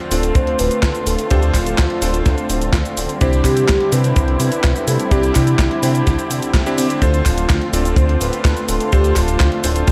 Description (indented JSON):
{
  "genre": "italo disco",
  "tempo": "126 BPM",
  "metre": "4/4",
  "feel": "straight",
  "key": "D dorian",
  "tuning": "A4 = 441 Hz",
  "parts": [
    { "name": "soft octave-layered synth lead", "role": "melody", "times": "0.0-9.8 s", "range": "E4 to C5", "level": "-24 LUFS", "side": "equal", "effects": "chorus, phaser, tape echo" },
    { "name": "muted studio string section", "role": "sustained chords", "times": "0.0-9.9 s", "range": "D3 to F4", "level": "-25 LUFS", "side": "equal", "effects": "none" },
    { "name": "clear electric grand piano", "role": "stabs", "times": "0.0-9.9 s", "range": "C4 to C5", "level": "-26 LUFS", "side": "equal", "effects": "none" },
    { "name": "chorused synth bass", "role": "bass", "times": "0.1-9.9 s", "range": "D1 to C3", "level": "-21 LUFS", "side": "equal", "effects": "tube saturation" },
    { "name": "clean 12-bit digital drum machine", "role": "drums", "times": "0.1-9.9 s", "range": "cabasa, handclaps, hi-hat, snare drum", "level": "-26 LUFS", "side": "equal", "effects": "none" },
    { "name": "kick drum", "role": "drums", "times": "0.4-9.9 s", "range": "none", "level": "-19 LUFS", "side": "equal", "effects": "none" }
  ],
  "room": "moderate plate reverb, RT60 1.8 s, small room ambience",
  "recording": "dreamy mix soaked in reverb",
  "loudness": "-16 LUFS",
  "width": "mono",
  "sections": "0.0-9.9 A section",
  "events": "none",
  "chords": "0.0 Dm7; 3.2 Cadd9; 7.0 Dm7"
}